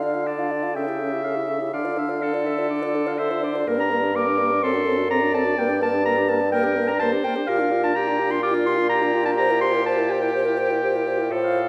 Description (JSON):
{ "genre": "quick classical-period movement for wind quintet", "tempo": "125 BPM", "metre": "4/4", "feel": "rubato", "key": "D minor", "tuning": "A4 = 442 Hz", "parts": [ { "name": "mellow hollow concert flute", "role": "melody", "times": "0.0-11.6 s", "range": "F4 to F5", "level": "-30 LUFS", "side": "equal", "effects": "none" }, { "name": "clear oboe", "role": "second line", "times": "0.0-11.7 s", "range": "F4 to F5", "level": "-32 LUFS", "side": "equal", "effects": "none" }, { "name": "warm French horn", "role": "accompaniment", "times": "0.0-11.7 s", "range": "Bb3 to G4", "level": "-30 LUFS", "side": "equal", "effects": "none" }, { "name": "warm clarinet", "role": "accompaniment", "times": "0.0-11.7 s", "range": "D5 to D6", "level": "-28 LUFS", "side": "equal", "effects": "none" }, { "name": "warm bassoon", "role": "bass", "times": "0.0-11.7 s", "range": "F#2 to D3", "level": "-27 LUFS", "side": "equal", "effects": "none" } ], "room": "wet recital hall reverb, RT60 1.6 s", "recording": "dark, warm production", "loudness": "-22 LUFS", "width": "mono", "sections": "0.0-11.7 A section", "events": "none", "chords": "0.0 Dm; 0.8 A7/C#; 1.7 Dm; 3.7 Gm; 4.6 D7/F#; 5.6 Gm; 7.5 Gm7/Bb; 9.4 C7/Bb" }